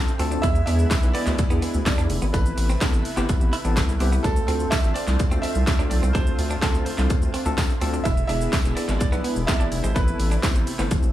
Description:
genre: dance-pop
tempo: 126 BPM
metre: 4/4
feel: straight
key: unclear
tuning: A4 = 440 Hz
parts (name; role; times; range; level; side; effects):
- warm concert grand piano; melody; 0.0-11.1 s; A4 to E5; -31 LUFS; right 4 dB; analog delay
- tine electric piano; accompaniment; 0.0-11.1 s; A3 to C5; -30 LUFS; left 2 dB; medium tremolo, sidechain pumping
- filtered supersaw swell; sustained chords; 0.0-11.1 s; C3 to B4; -33 LUFS; right 1 dB; sidechain pumping
- house drum kit; drums; 0.1-11.1 s; handclaps, hi-hat, kick drum, shaker, snare drum, toms; -23 LUFS; equal; overdrive
- direct-recorded clean electric guitar; riff; 0.2-10.9 s; G#3 to E4; -32 LUFS; right 5 dB; lush chorus
- round analog bass; bass; 0.2-11.1 s; E1 to E2; -23 LUFS; equal; sidechain pumping
- tambourine; percussion; 0.2-11.0 s; none; -40 LUFS; left 3 dB; none
room: little or no reverb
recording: dry, gritty hardware recording, small room ambience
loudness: -19 LUFS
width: side -13 dB against mid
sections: 0.0-11.1 A section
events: drum fill 10.9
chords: 0.4 E7; 2.3 Amadd9; 4.2 Dm7; 8.1 E7; 10.0 Amadd9

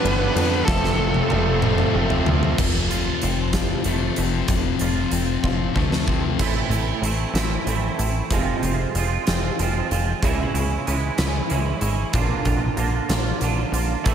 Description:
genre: quiet-loud alternative rock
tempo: 63 BPM (dotted quarters)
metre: 6/8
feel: straight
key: A phrygian from 6.4 s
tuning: A4 = 440 Hz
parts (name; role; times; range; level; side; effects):
- nasal lead guitar with a parked wah; melody; 0.0-2.2 s; A4 to B4; -26 LUFS; equal; overdrive, slapback echo, tape echo
- overdriven electric guitar; riff; 0.0-2.6, 14.0-14.1 s; F2 to D4; -25 LUFS; right 10 dB; none
- sludgy distorted guitar; riff; 0.0-6.4 s; F2 to D4; -25 LUFS; left 10 dB; overdrive
- plucky analog bass; bass; 0.0-14.1 s; F1 to F2; -24 LUFS; equal; none
- huge arena drum kit; drums; 0.1-14.1 s; crash cymbal, hi-hat, kick drum, ride cymbal, snare drum, toms; -24 LUFS; equal; none
- twangy electric guitar; arpeggios; 2.6-14.1 s; F2 to F4; -26 LUFS; right 6 dB; ensemble chorus
room: moderate lush hall reverb, RT60 1.9 s, small room ambience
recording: big arena sound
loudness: -19 LUFS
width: side -8 dB against mid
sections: 0.0-2.6 A section; 2.6-6.4 B section; 6.4-14.1 C section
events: drum fill 0.7-2.6, 5.4-6.4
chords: 0.0 G; 0.7 F; 6.4 Am; 8.3 Fm; 10.2 C#m; 12.1 Bb

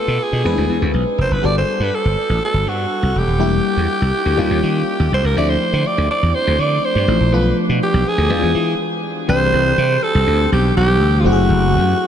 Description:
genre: polished 1980s jazz-funk pop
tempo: 122 BPM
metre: 4/4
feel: straight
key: unclear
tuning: A4 = 440 Hz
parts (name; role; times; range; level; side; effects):
- growling alto saxophone; melody; 0.0-12.1 s; F4 to D5; -18 LUFS; right 2 dB; diffuse ambient delay
- FM electric piano; accompaniment; 0.0-12.1 s; E3 to B4; -21 LUFS; left 4 dB; phaser, wide subtle chorus
- slap bass; bass; 0.1-11.9 s; D#1 to E3; -17 LUFS; equal; none
room: moderate huge ambient reverb, RT60 7.3 s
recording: dreamy mix soaked in reverb, nothing above 10.5 kHz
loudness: -14 LUFS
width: side -9 dB against mid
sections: 0.0-1.4 A section; 1.4-9.3 B section; 9.3-12.1 C section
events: break 8.8-9.3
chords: 0.5 E7b13; 1.4 Gmaj9; 3.4 Em7b5; 4.4 D#9; 5.4 Dm7; 7.3 Bm7b5; 8.3 E7b9; 9.3 Cmaj9; 11.2 F#m7b5

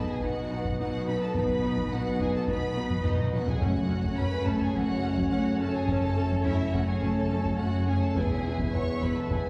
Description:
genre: cinematic, epic orchestral film score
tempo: 106 BPM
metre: 4/4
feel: straight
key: F# dorian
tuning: A4 = 437 Hz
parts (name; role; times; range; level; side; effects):
- warm symphonic violin section; melody; 0.0-9.5 s; D#5 to C#6; -41 LUFS; equal; none
- warm symphonic violin section; second line; 0.0-9.5 s; D#4 to C#5; -40 LUFS; equal; none
- warm symphonic viola section; accompaniment; 0.0-9.4 s; A3 to E4; -36 LUFS; equal; none
- dark French horn section; sustained chords; 0.0-9.5 s; G#3 to D#4; -35 LUFS; equal; none
- warm woodwind section; sustained chords; 0.0-9.5 s; B3 to E5; -40 LUFS; equal; none
- warm studio double bass section; bass; 0.0-9.5 s; E1 to B1; -35 LUFS; equal; none
- warm symphonic cello section; bass; 0.0-9.5 s; E2 to B2; -36 LUFS; equal; none
- taiko ensemble; drums; 0.2-9.5 s; none; -34 LUFS; equal; none
room: wet scoring stage reverb, RT60 1.7 s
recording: heard from further back in the room, small room reverb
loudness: -28 LUFS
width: mono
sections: 0.0-9.5 A section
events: drum fill 3.0-3.6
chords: 0.0 B; 3.6 F#m; 8.2 E

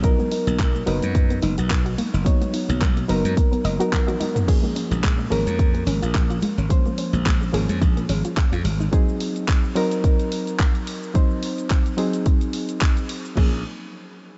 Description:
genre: nu-disco, nu disco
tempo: 108 BPM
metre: 4/4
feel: swing 56% on 16ths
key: Bb minor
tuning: A4 = 440 Hz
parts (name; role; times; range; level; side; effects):
- reed electric piano; accompaniment; 0.0-13.6 s; F3 to Db5; -28 LUFS; equal; low-pass filter, diffuse ambient delay
- soft round pluck; arpeggios; 0.0-8.8 s; Ab3 to D#5; -33 LUFS; equal; chorus, sidechain pumping, delay
- glassy slap bass; bass; 0.0-8.9, 13.4-13.6 s; F#1 to F#2; -26 LUFS; equal; none
- electronic kick drum; drums; 0.0-13.5 s; none; -22 LUFS; equal; none
- pop drum kit; drums; 0.0-13.5 s; cabasa, crash cymbal, handclaps, hi-hat, toms; -34 LUFS; equal; none
- tube shaker and congas; percussion; 0.0-8.9 s; none; -36 LUFS; equal; none
room: light reverb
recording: nothing above 7.9 kHz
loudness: -21 LUFS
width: mono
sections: 0.0-4.5 A section; 4.5-13.4 B section; 13.4-14.4 C section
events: drum fill 3.9-4.5; filter sweep on reed electric piano 4.5-13.4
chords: 0.0 Bmaj7; 4.5 Bbm7; 8.7 Ab7; 13.4 Bbm7

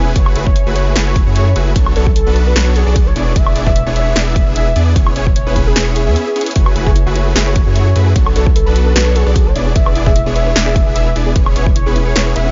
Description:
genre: future bass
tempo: 150 BPM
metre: 4/4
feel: swing 54% on 16ths, half-time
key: F# minor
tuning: A4 = 440 Hz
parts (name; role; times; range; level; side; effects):
- warm velvety synth lead; melody; 0.0-12.5 s; G#4 to E5; -24 LUFS; equal; chorus, cassette tape, sidechain pumping, dub echo
- ethereal airy pad; sustained chords; 0.0-12.5 s; A4 to D6; -34 LUFS; equal; none
- supersaw chords; riff; 0.0-12.5 s; A3 to F#5; -23 LUFS; equal; sidechain pumping
- saturated sub bass; bass; 0.0-12.5 s; E1 to F#2; -17 LUFS; equal; sidechain pumping
- big-room dance drum kit; drums; 0.2-12.4 s; hi-hat, snare drum, woodblock; -21 LUFS; equal; none
- electronic kick drum; drums; 0.2-11.7 s; none; -16 LUFS; equal; none
- thumb-piano-like synth pluck; arpeggios; 6.6-12.5 s; E4 to B5; -28 LUFS; equal; chorus, sidechain pumping, dub echo
room: little or no reverb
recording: nothing above 7.5 kHz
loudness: -13 LUFS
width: mono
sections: 0.0-12.5 A section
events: break 6.2-6.6; drum fill 6.4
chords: 0.2 F#m11; 1.8 Bm9; 3.2 E7; 5.0 C#m7/E; 6.6 F#m11; 8.2 Bm9; 9.6 E7; 11.4 C#m7/E

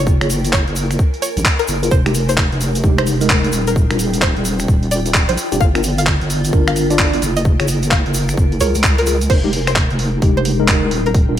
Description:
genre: UK garage, two-step garage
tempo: 130 BPM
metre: 4/4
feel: swing 63% on 16ths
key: F dorian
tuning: A4 = 439 Hz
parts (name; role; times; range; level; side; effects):
- string-like resonator pluck; melody; 0.0-11.2 s; Bb4 to F5; -24 LUFS; left 1 dB; chorus, digital delay
- deep soft wobble bass; bass; 0.0-11.4 s; Eb1 to Db2; -18 LUFS; equal; chorus
- granular cloud pad; texture; 0.0-11.4 s; Eb4 to Ab5; -26 LUFS; left 1 dB; built-in reverb, sidechain pumping
- electronic kick drum; drums; 0.1-11.3 s; none; -15 LUFS; equal; none
- tube shaker; percussion; 0.1-9.3 s; none; -28 LUFS; left 4 dB; none
- mellow tine electric piano; stabs; 0.2-11.3 s; Ab3 to D5; -21 LUFS; left 1 dB; medium stereo tremolo, ping-pong delay
- breakbeat sampler-style drum kit; drums; 0.2-11.3 s; crash cymbal, finger snaps, handclaps, hi-hat; -20 LUFS; right 1 dB; gated reverb
room: digital ambience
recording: bright 1980s-style digital production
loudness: -13 LUFS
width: side -11 dB against mid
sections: 0.0-9.3 A section; 9.3-11.4 A section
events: drop 0.0-9.3, 9.3-11.4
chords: 0.0 Gbmaj9; 1.9 Fm9; 3.5 Ebmaj9; 5.6 Gm7; 7.2 Gbmaj9; 9.3 Fm9

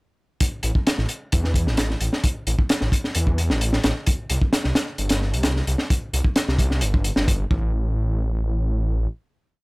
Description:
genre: breakbeat, breaks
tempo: 131 BPM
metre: 4/4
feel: straight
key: A minor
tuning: A4 = 440 Hz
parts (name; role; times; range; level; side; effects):
- crunchy breakbeat drum kit; drums; 0.4-7.6 s; hi-hat, kick drum, snare drum; -21 LUFS; equal; none
- detuned saw bass; bass; 0.6-9.1 s; G1 to E2; -22 LUFS; equal; none
room: little or no reverb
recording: none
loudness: -20 LUFS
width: side -28 dB against mid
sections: 0.4-7.7 drop; 7.7-9.6 final hit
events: drop 0.4-7.7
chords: none

